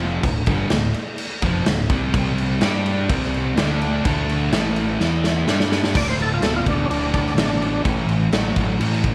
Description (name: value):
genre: classic rock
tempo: 126 BPM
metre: 4/4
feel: straight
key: unclear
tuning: A4 = 439 Hz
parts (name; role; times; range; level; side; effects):
- distorted electric guitar; riff; 0.0-9.1 s; D2 to G4; -30 LUFS; equal; distortion
- sludgy distorted guitar; riff; 0.0-9.1 s; D2 to G4; -26 LUFS; equal; overdrive
- growling fingered electric bass; bass; 0.0-9.1 s; D1 to A2; -28 LUFS; equal; overdrive
- big rock drum kit; drums; 0.0-9.1 s; crash cymbal, kick drum, snare drum; -24 LUFS; equal; none
- group handclap; percussion; 0.7-8.4 s; none; -39 LUFS; equal; none
- overdriven tonewheel organ; melody; 6.0-7.8 s; C#4 to D5; -26 LUFS; equal; slow rotary speaker, chorus vibrato, slapback echo
room: little or no reverb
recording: none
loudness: -20 LUFS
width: mono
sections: 0.0-5.9 A section; 5.9-9.1 B section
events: drum fill 5.0-5.9; tonewheel organ solo 5.9-9.1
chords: 0.2 D5; 2.1 C5; 2.6 G5; 3.1 C5; 3.6 D5; 4.5 A5; 5.0 E5; 5.5 G5; 5.9 D5; 7.9 A5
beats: | 0.24 0.71 1.19 1.67 | 2.14 2.62 3.09 3.57 | 4.04 4.52 5.00 5.47 | 5.95 6.43 6.90 7.38 | 7.86 8.33 8.81